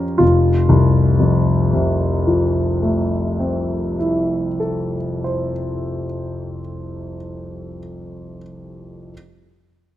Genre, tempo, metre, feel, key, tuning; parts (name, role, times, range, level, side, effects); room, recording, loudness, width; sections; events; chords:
classical, impressionist solo piano; 36 BPM; 4/4; rubato; F major; A4 = 441 Hz
warm grand piano; solo; 0.0-9.1 s; F1 to C5; -17 LUFS; left 1 dB
light reverb; close, detailed microphones; -16 LUFS; side -13 dB against mid
0.2-7.0 A section
0.2 Fmaj7